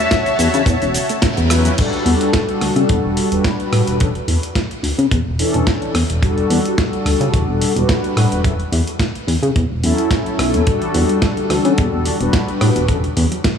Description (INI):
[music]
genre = nu-disco, nu disco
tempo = 108 BPM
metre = 4/4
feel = swing 54% on 16ths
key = E dorian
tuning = A4 = 440 Hz
[part]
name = bright concert flute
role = melody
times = 0.0-1.2 s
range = E5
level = -23 LUFS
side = left 2 dB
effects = diffuse ambient delay
[part]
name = lush unison pad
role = sustained chords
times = 0.0-1.8 s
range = F#4 to A5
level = -22 LUFS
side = left 1 dB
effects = chorus, sidechain pumping
[part]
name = soft round pluck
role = arpeggios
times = 0.0-1.7, 10.7-13.5 s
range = C#3 to F#4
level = -28 LUFS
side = right 1 dB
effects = none
[part]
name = dusty soul sampler-style drum kit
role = drums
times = 0.1-13.6 s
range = cabasa, crash cymbal, hi-hat, rim click, snare drum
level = -23 LUFS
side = right 1 dB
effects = none
[part]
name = kick drum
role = drums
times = 0.1-13.6 s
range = none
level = -19 LUFS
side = equal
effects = none
[part]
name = chorused synth bass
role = bass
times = 0.4-13.3 s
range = E1 to C#3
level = -17 LUFS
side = left 1 dB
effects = tube saturation
[part]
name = mellow synth brass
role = accompaniment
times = 1.5-13.0 s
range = E3 to B4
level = -19 LUFS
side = left 1 dB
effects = chorus, sidechain pumping, analog delay
[sound]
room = light reverb, small room ambience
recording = small room reverb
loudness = -14 LUFS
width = side -7 dB against mid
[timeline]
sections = 0.0-1.8 A section; 1.8-13.6 B section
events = drop 0.0-1.8; band accent 1.2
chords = 0.0 F#m7/E; 1.8 Em11; 4.0 Aadd11/E; 5.9 Em11; 8.4 F#m7/E; 10.7 Em11; 12.9 Bm11/E (rootless)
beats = 0.11 0.67 1.22 | 1.78 2.33 2.89 3.45 | 4.00 4.56 5.11 5.67 | 6.22 6.78 7.33 7.89 | 8.45 9.00 9.56 10.11 | 10.67 11.22 11.78 12.34 | 12.89 13.45